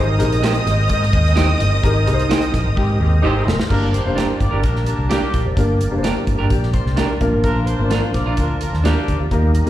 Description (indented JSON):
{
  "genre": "uptempo 1960s-style soul",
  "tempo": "128 BPM",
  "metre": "4/4",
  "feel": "straight",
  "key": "unclear",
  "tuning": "A4 = 439 Hz",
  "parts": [
    { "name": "warm studio violin section", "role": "second line", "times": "0.0-3.4 s", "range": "Eb5 to Eb6", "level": "-23 LUFS", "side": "right 1 dB", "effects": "slapback echo" },
    { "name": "dark upright piano", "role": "accompaniment", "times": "0.0-9.7 s", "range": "Bb3 to C5", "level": "-22 LUFS", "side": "left 2 dB", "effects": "slapback echo" },
    { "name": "overdriven tonewheel organ", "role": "sustained chords", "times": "0.0-9.7 s", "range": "F3 to Bb4", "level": "-28 LUFS", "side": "right 1 dB", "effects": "chorus vibrato, slow rotary speaker" },
    { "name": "vintage muted fingered electric bass", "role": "bass", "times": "0.0-9.7 s", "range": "F1 to Ab2", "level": "-18 LUFS", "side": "equal", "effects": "none" },
    { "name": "natural country drum kit", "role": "drums", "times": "0.2-9.7 s", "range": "crash cymbal, hi-hat, kick drum, snare drum", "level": "-22 LUFS", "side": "equal", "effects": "none" },
    { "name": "electric guitar through a small old amp", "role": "stabs", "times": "0.4-8.9 s", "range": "D4 to C5", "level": "-23 LUFS", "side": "right 5 dB", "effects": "slapback echo" },
    { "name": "warm saxophone section", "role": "second line", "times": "2.8-9.2 s", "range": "Bb3 to D5", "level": "-24 LUFS", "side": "left 1 dB", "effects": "slapback echo" },
    { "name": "electric guitar at the edge of break-up", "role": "riff", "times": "2.8-3.7, 6.5-7.4 s", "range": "G4 to C5", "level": "-29 LUFS", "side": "left 4 dB", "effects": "wide subtle chorus, slapback echo" }
  ],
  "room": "light reverb",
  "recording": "live gig heard through the venue's PA, recital hall reverb",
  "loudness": "-15 LUFS",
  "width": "side -13 dB against mid",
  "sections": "0.0-3.7 A section; 3.7-9.7 B section",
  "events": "band accent 1.8-3.7; drum fill 2.8-3.7",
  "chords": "0.0 Abmaj7; 3.7 Gm; 7.2 Bb",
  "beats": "0.43 0.90 1.37 | 1.83 2.30 2.77 3.23 | 3.70 4.17 4.64 5.11 | 5.57 6.04 6.51 6.97 | 7.44 7.91 8.38 8.84 | 9.31"
}